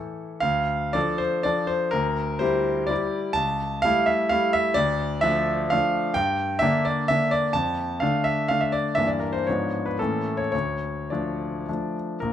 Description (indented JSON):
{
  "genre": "classical, romantic triple-time dance for piano with dotted rhythms",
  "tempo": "101-142 BPM",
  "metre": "3/4",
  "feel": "rubato",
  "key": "D minor",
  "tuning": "A4 = 438 Hz",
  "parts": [
    { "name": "bright grand piano", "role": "solo", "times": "0.0-12.3 s", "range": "Bb1 to A5", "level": "-22 LUFS", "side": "equal", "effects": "none" }
  ],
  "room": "moderate recital hall reverb, RT60 1.5 s",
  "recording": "close, detailed microphones",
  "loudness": "-22 LUFS",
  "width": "side -10 dB against mid",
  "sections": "0.4-12.2 A section",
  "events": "none",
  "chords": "0.4 Dm; 1.9 Em7b5/D; 3.4 A7/C#; 4.8 Dm; 6.2 Gm; 7.6 Dm/F; 9.0 Em7b5/G; 9.5 G#dim7; 10.0 A; 10.5 Dm"
}